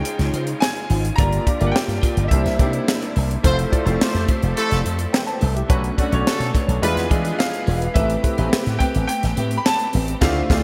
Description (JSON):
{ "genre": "polished 1980s jazz-funk pop", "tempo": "106 BPM", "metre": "4/4", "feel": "straight", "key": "unclear", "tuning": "A4 = 440 Hz", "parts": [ { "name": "clear grand piano", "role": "melody", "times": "0.0-3.1, 7.4-10.6 s", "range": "Eb5 to B5", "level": "-29 LUFS", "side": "equal", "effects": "analog chorus, digital delay" }, { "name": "warm grand piano", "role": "accompaniment", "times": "0.0-10.6 s", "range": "Ab3 to A5", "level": "-27 LUFS", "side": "equal", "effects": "analog chorus" }, { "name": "clear studio string section", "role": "sustained chords", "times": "0.0-10.6 s", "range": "C3 to E5", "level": "-35 LUFS", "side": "equal", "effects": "none" }, { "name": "electric guitar at the edge of break-up", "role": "riff", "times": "0.0-10.6 s", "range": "C4 to F5", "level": "-33 LUFS", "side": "equal", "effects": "lush chorus" }, { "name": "tight funk drum kit", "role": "drums", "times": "0.1-10.6 s", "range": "crash cymbal, hi-hat, kick drum, snare drum", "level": "-24 LUFS", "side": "equal", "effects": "gated reverb" }, { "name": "slap bass with an envelope filter", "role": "bass", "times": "0.2-10.6 s", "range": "E1 to E3", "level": "-24 LUFS", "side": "equal", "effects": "none" }, { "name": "warm horn section", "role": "second line", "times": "3.4-7.1 s", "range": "D3 to C5", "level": "-29 LUFS", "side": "equal", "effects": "none" } ], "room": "light reverb, studio reverb", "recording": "bright 1980s-style digital production", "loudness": "-20 LUFS", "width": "mono", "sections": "0.0-10.6 A section", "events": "band accent 10.2-10.6", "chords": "0.0 Dbmaj9; 1.2 Gm7; 2.3 C9; 3.4 Fmaj7; 5.7 Bm9; 6.8 E7b9; 8.0 Am9" }